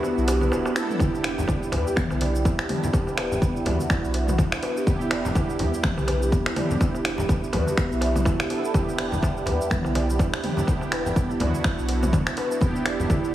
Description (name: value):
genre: afro house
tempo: 124 BPM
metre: 4/4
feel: swing 58% on 16ths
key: E minor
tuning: A4 = 440 Hz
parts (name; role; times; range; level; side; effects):
- marimba with medium mallets; arpeggios; 0.0-13.2 s; B3 to E5; -29 LUFS; equal; sidechain pumping, low-pass filter, digital delay
- mellow synth brass; stabs; 0.0-13.3 s; B3 to A4; -29 LUFS; right 3 dB; chorus, phaser, sidechain pumping, digital delay
- house drum kit; drums; 0.0-13.3 s; finger snaps, hi-hat, shaker, toms; -29 LUFS; left 1 dB; none
- darbuka; percussion; 0.0-13.2 s; none; -34 LUFS; right 2 dB; none
- warm sub bass; bass; 0.2-13.3 s; D1 to E2; -29 LUFS; equal; sidechain pumping
- congas; percussion; 0.4-13.2 s; none; -31 LUFS; left 1 dB; none
- electronic kick drum; drums; 1.0-13.2 s; none; -23 LUFS; equal; none
room: light reverb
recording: heavily compressed radio sound, studio reverb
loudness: -21 LUFS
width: side -13 dB against mid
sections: 0.0-1.0 A section; 1.0-13.3 B section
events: drop 0.0-1.0; break 0.0-1.0; drum fill 0.8; filter sweep on marimba 1.0-13.3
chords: 0.0 E7(no3); 1.0 Em7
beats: 0.03 0.52 | 1.00 1.49 1.97 2.45 | 2.94 3.42 3.90 4.39 | 4.87 5.36 5.84 6.33 | 6.81 7.29 7.78 8.26 | 8.74 9.23 9.71 10.20 | 10.68 11.16 11.65 12.13 | 12.62 13.10